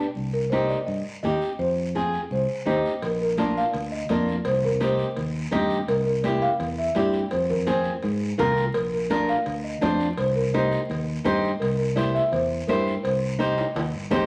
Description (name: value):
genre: latin, cumbia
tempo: 168 BPM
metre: 4/4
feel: straight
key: C minor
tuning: A4 = 440 Hz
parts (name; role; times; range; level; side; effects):
- flamenco guitar; accompaniment; 0.0-14.3 s; Bb3 to C5; -28 LUFS; equal; none
- fingered electric bass; bass; 0.2-14.3 s; G1 to Ab2; -31 LUFS; equal; none
- congas; percussion; 0.2-14.3 s; none; -36 LUFS; equal; none
- guiro; percussion; 0.2-14.3 s; none; -45 LUFS; equal; none
- buzzing marimba with soft mallets; melody; 0.3-14.1 s; Ab4 to F5; -28 LUFS; equal; none
- cowbell and timbales; percussion; 3.0-14.3 s; none; -39 LUFS; equal; none
room: moderate large studio reverb, RT60 1.2 s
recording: vinyl crackle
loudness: -24 LUFS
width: mono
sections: 0.0-3.0 A section; 3.0-14.3 B section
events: drum fill 13.6-14.3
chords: 0.2 Cm; 1.6 Fm; 2.3 Cm; 3.0 Bb; 4.5 Cm; 5.9 C; 7.3 Fm; 8.7 Bb; 10.2 Cm; 11.6 C7; 13.0 Cm